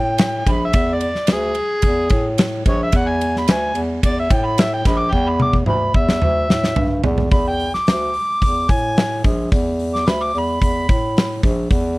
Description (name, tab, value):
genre	blues rock power trio and southern rock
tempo	109 BPM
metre	4/4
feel	straight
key	E mixolydian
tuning	A4 = 442 Hz
part	overdriven harmonica	melody	0.0-11.4 s	G#4 to D6	-21 LUFS	equal	none
part	breathy bass clarinet	bass	0.0-12.0 s	A#1 to A2	-21 LUFS	equal	none
part	huge arena drum kit	drums	0.2-11.8 s	hi-hat, kick drum, ride cymbal, snare drum, toms	-18 LUFS	equal	none
room	little or no reverb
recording	dry, close 1970s-style studio recording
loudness	-15 LUFS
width	side -22 dB against mid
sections	0.0-7.3 A section; 7.3-12.0 A section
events	harmonica solo 0.0-12.0; drum fill 5.1-7.3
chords	0.0 E; 7.3 E5